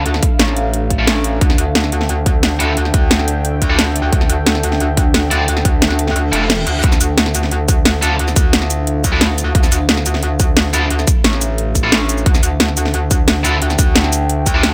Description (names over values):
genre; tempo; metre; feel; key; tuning
dark technical drum and bass; 177 BPM; 4/4; straight; D minor; A4 = 440 Hz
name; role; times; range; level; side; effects
deep dark ambient pad; sustained chords; 0.0-14.7 s; D4 to G5; -25 LUFS; equal; chorus, built-in reverb, sidechain pumping
metallic wobble bass; bass; 0.0-14.7 s; F1 to D2; -20 LUFS; equal; chorus, overdrive, sidechain pumping
drum and bass drum kit; drums; 0.1-14.7 s; cabasa, hi-hat, snare drum; -19 LUFS; equal; none
electronic kick drum; drums; 0.2-14.5 s; none; -17 LUFS; equal; overdrive
high-gain distorted guitar; stabs; 1.0-14.7 s; D4 to A4; -24 LUFS; equal; distortion, low-pass filter, digital delay
reverse cymbal; sound effects; 6.3-6.8 s; none; -28 LUFS; equal; none
room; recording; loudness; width
digital ambience; none; -15 LUFS; mono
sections
0.0-14.7 A section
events
kick drops out 6.2-6.8; reverse cymbal 6.3-6.8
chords
0.0 Dmadd9